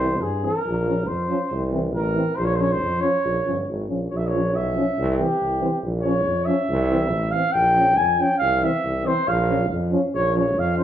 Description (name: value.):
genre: balkan folk, Balkan brass band.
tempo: 139 BPM.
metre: 2/4.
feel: swing 55% on 16ths.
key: Bb dorian sharp4.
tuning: A4 = 440 Hz.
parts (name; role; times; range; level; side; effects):
mellow flugelhorn; melody; 0.0-10.8 s; G4 to Ab5; -22 LUFS; equal; none.
mellow French horn; accompaniment; 0.0-10.8 s; C4 to Db4; -28 LUFS; left 3 dB; none.
mellow euphonium; accompaniment; 0.0-10.8 s; E3 to F3; -30 LUFS; right 4 dB; none.
warm tuba; bass; 0.0-10.8 s; G1 to G2; -24 LUFS; equal; none.
room: wet large studio reverb, RT60 0.9 s.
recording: band playing live in one room.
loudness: -19 LUFS.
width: side -10 dB against mid.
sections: 0.0-10.8 A section.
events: flugelhorn solo 0.0-10.8.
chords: 0.0 C; 0.7 Bbm; 1.5 C; 2.4 Bbm; 5.0 C; 5.8 Bbm; 6.7 C; 7.6 Bbm; 8.4 C; 9.3 Bbm.